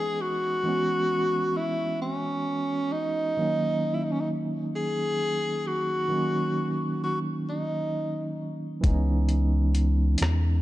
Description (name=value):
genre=slow six-eight R&B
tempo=44 BPM (dotted quarters)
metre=6/8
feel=straight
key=C# dorian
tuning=A4 = 441 Hz
part: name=breathy tenor saxophone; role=melody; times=0.0-8.5 s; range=C#4 to G#4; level=-27 LUFS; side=equal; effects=tape echo
part: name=barky tine electric piano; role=accompaniment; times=0.0-10.6 s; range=D#3 to D#5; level=-30 LUFS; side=right 2 dB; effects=overdrive, fast tremolo
part: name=rubbery square bass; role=bass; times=8.8-10.6 s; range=C#2 to E2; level=-22 LUFS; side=equal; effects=none
part: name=dusty soul sampler-style drum kit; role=drums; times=8.8-10.4 s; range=hi-hat, kick drum, rim click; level=-27 LUFS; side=equal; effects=none
room=light reverb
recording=dark, warm production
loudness=-24 LUFS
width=side -16 dB against mid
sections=0.0-10.6 A section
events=none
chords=0.0 C#m9; 3.4 D#m7; 8.8 C#m9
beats=| 0.65 2.01 | 3.38 4.74 | 6.11 7.47 | 8.83 10.20